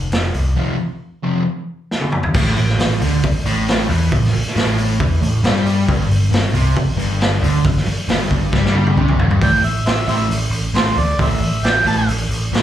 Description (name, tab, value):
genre	garage rock duo or trio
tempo	135 BPM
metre	4/4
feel	straight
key	A minor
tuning	A4 = 440 Hz
part	overdriven picked electric bass	bass	0.0-12.6 s	F1 to G2	-19 LUFS	equal	tube saturation
part	raw garage drum kit	drums	0.1-12.6 s	crash cymbal, hi-hat, kick drum, snare drum, toms	-19 LUFS	equal	none
part	fuzz guitar	riff	0.6-12.6 s	F2 to A3	-19 LUFS	equal	distortion, slapback echo
part	overdriven harmonica	melody	9.4-12.1 s	F4 to A5	-19 LUFS	right 2 dB	slapback echo
room	little or no reverb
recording	live gig heard through the venue's PA, club reverb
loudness	-14 LUFS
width	side -11 dB against mid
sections	0.0-2.3 A section; 2.3-9.4 B section; 9.4-12.6 C section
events	break 0.6-2.3; drum fill 1.9-2.3, 8.5-9.4; harmonica solo 9.4-12.6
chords	0.0 F5; 2.3 A5; 5.9 G5; 9.4 A5